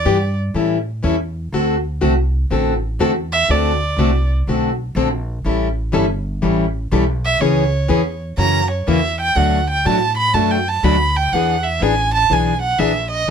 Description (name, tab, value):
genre	acoustic string swing (jazz manouche)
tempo	122 BPM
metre	4/4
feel	swing 66% on 8ths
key	A mixolydian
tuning	A4 = 440 Hz
part	dark violin	melody	0.0-0.4, 3.3-4.3, 7.3-13.3 s	C#5 to B5	-18 LUFS	right 3 dB	none
part	upright bass	bass	0.0-13.3 s	G1 to A2	-20 LUFS	equal	none
part	picked plugged-in steel-string acoustic guitar	accompaniment	0.1-13.3 s	B2 to A4	-18 LUFS	left 3 dB	none
room	light reverb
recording	close, detailed microphones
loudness	-15 LUFS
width	side -7 dB against mid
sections	0.0-13.3 A section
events	violin solo 0.0-13.3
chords	0.0 Em7; 0.5 A7; 1.5 D7; 5.4 A7; 7.4 C#m7; 8.4 F#7; 9.4 Bm7; 11.3 E7